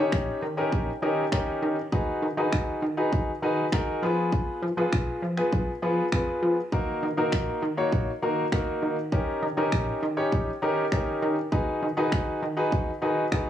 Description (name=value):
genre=dance-pop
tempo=100 BPM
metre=4/4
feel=straight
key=Eb minor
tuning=A4 = 440 Hz
part: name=warm concert grand piano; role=accompaniment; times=0.0-13.5 s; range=Bb3 to Db5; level=-26 LUFS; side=left 1 dB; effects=sidechain pumping, cassette tape
part: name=plucky analog bass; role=bass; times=0.0-13.5 s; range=Bb1 to F3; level=-30 LUFS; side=right 1 dB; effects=sidechain pumping
part: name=pop drum kit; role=drums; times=0.1-13.5 s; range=finger snaps, kick drum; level=-28 LUFS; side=equal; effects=cassette tape
room=light reverb, digital ambience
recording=home recording on cassette, small room ambience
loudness=-24 LUFS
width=side -10 dB against mid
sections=0.0-13.5 A section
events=none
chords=0.0 Eb7; 1.9 Abm7/Eb; 4.0 Fdim; 6.7 Ebm; 9.1 Eb7; 11.5 Abm7/Eb